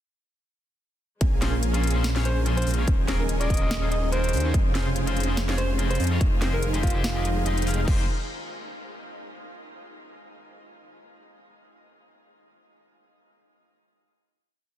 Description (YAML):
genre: future bass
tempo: 144 BPM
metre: 4/4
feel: swing 55% on 16ths, half-time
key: F minor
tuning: A4 = 440 Hz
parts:
  - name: clear studio string section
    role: sustained chords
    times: 1.2-8.1 s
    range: Bb2 to C5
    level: -41 LUFS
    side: left 1 dB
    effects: none
  - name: dense compressed supersaw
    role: riff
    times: 1.2-8.0 s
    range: Db4 to C6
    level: -33 LUFS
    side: right 1 dB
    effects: sidechain pumping
  - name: wide detuned saw bass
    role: bass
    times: 1.2-8.1 s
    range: Eb1 to F2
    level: -25 LUFS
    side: equal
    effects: chorus, sidechain pumping
  - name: electronic kick drum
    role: drums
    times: 1.2-8.0 s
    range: none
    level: -24 LUFS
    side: equal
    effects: none
  - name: trap drum kit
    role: drums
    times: 1.2-8.0 s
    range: crash cymbal, hi-hat, snare drum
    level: -33 LUFS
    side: equal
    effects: none
  - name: electric guitar at the edge of break-up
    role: accompaniment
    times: 1.4-8.1 s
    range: Db4 to F5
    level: -34 LUFS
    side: left 3 dB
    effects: spring reverb, sidechain pumping, ping-pong delay
  - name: growling alto saxophone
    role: melody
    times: 2.3-7.5 s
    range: F4 to Eb5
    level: -34 LUFS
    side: equal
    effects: sidechain pumping, ping-pong delay
room: digital ambience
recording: dense, heavily limited modern master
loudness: -22 LUFS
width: side -12 dB against mid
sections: 1.2-7.9 drop; 7.9-9.5 final chord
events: drop 1.2-7.9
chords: 1.2 Bbm7; 2.9 Eb7sus4; 4.5 Dbmaj7/F; 6.2 Fm7